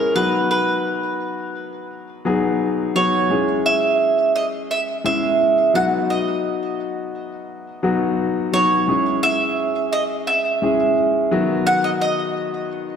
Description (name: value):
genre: pop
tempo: 86 BPM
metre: 4/4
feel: straight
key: B major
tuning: A4 = 439 Hz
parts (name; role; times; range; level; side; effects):
- mandolin; melody; 0.0-13.0 s; A#4 to F#5; -19 LUFS; right 3 dB; none
- warm concert grand piano; accompaniment; 0.0-13.0 s; D#3 to B4; -21 LUFS; left 4 dB; none
room: wet concert hall reverb, RT60 1.9 s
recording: none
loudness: -17 LUFS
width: side -7 dB against mid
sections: 0.0-13.0 A section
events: none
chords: 0.2 B; 3.3 C#m; 5.7 B; 8.9 C#m; 11.3 B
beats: | 0.51 1.21 1.91 2.60 | 3.30 4.00 4.70 5.39 | 6.09 6.79 7.49 8.18 | 8.88 9.58 10.28 10.97 | 11.67 12.37